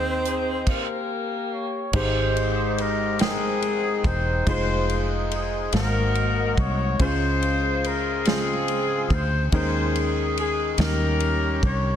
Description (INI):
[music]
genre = slow gospel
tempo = 47 BPM (dotted quarters)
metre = 6/8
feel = straight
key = Ab major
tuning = A4 = 439 Hz
[part]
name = breathy tenor saxophone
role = melody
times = 0.0-1.1 s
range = C4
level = -30 LUFS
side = right 3 dB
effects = slapback echo
[part]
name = dark horn section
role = melody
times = 0.0-12.0 s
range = Bb3 to Db5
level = -25 LUFS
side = left 2 dB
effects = slapback echo
[part]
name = warm baby grand piano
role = accompaniment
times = 0.0-12.0 s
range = Ab2 to G5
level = -28 LUFS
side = left 1 dB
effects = none
[part]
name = fingered electric bass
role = bass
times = 0.0-12.0 s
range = Fb1 to Eb2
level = -26 LUFS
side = equal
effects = none
[part]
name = warm soul drum kit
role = drums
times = 0.3-11.8 s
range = crash cymbal, hi-hat, kick drum, ride cymbal, snare drum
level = -28 LUFS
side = equal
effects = none
[sound]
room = moderate echo chamber reverb, RT60 2.3 s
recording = dense, heavily limited modern master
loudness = -21 LUFS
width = side -9 dB against mid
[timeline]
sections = 0.0-1.9 A section; 1.9-12.0 B section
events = stop 0.7-1.9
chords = 0.0 Ab/Eb; 0.7 Eb; 1.9 Abmaj7; 4.5 Fm7; 5.7 Ab13; 7.0 Dbmaj7; 9.5 Eb7sus4; 10.8 Eb7